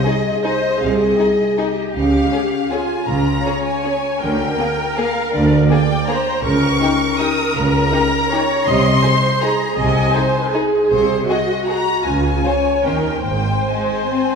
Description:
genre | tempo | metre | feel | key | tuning
classical, orchestral ballroom waltz | 138-172 BPM | 3/4 | rubato | Ab major | A4 = 444 Hz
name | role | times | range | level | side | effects
rich studio violin section | melody | 0.0-14.4 s | C5 to Eb6 | -22 LUFS | left 3 dB | none
rich studio violin section | second line | 0.0-14.4 s | Ab3 to C5 | -25 LUFS | left 4 dB | none
rich studio viola section | accompaniment | 0.0-14.4 s | F4 to Eb5 | -20 LUFS | equal | none
clear studio cello section | bass | 0.8-13.6 s | Ab2 to Eb3 | -21 LUFS | equal | none
rich studio double bass section | bass | 0.8-13.6 s | Ab1 to Eb2 | -22 LUFS | right 3 dB | none
room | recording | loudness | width
wet scoring stage reverb, RT60 2.1 s | heard from further back in the room | -15 LUFS | side -5 dB against mid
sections
0.0-14.4 A section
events
none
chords
0.0 Ab; 2.0 Db; 4.2 Bb/D; 6.4 Eb7(no3)/Db; 8.7 Ab/C; 10.9 Ab7/C; 12.1 Db; 12.9 Eb; 13.3 Ab

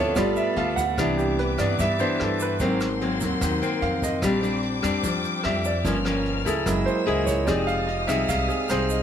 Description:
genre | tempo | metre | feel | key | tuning
bossa nova | 148 BPM | 4/4 | straight | unclear | A4 = 440 Hz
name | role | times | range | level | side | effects
clear grand piano | accompaniment | 0.0-9.0 s | E3 to F#5 | -25 LUFS | right 3 dB | none
nylon-string guitar | accompaniment | 0.0-9.0 s | G2 to A4 | -26 LUFS | left 3 dB | none
warm symphonic string section | sustained chords | 0.0-9.0 s | Ab3 to F6 | -32 LUFS | left 3 dB | none
upright bass | bass | 0.0-9.0 s | F1 to G2 | -30 LUFS | equal | none
jazz brush drum kit | drums | 0.2-9.0 s | hi-hat, kick drum, rim click | -33 LUFS | equal | none
egg shaker | percussion | 0.2-9.0 s | none | -40 LUFS | right 7 dB | none
room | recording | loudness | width
moderate studio reverb, RT60 0.8 s | none | -21 LUFS | side -9 dB against mid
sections
1.0-9.0 A section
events
grand piano solo 0.0-9.0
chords
0.2 G9; 1.0 Cmaj9; 2.6 Ab9; 4.2 Bb69; 5.9 Gm7b5; 6.7 F#9; 7.5 Fm7

